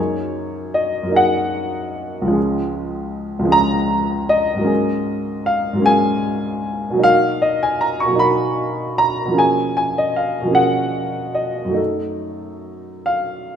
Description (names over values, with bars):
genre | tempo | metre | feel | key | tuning
classical, impressionist solo piano | 51 BPM (dotted quarters) | 6/8 | rubato | unclear | A4 = 440 Hz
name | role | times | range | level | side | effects
warm grand piano | solo | 0.0-13.6 s | Db2 to Db6 | -17 LUFS | equal | none
room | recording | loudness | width
moderate scoring stage reverb, RT60 1.7 s | minimal, uncompressed stereo recording | -16 LUFS | side -8 dB against mid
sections
0.0-13.6 A section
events
none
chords
0.0 Gb69; 4.7 Ab9sus4; 7.0 Cbmaj7; 9.4 Gbmaj9/Cb; 11.8 Gbm6